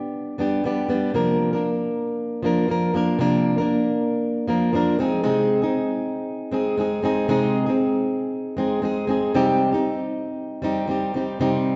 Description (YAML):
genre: pop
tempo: 117 BPM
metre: 4/4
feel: straight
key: C minor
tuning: A4 = 442 Hz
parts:
  - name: fingerpicked plugged-in steel-string acoustic guitar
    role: solo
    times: 0.0-11.8 s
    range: C3 to Bb4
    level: -22 LUFS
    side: equal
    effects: none
room: wet scoring stage reverb, RT60 1.7 s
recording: recorded in a church or concert hall, nothing above 7.7 kHz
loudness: -22 LUFS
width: mono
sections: 0.0-9.3 A section; 9.3-11.8 A section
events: none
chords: 0.0 G; 1.2 Bb/C; 5.0 Ab/C; 9.3 Cm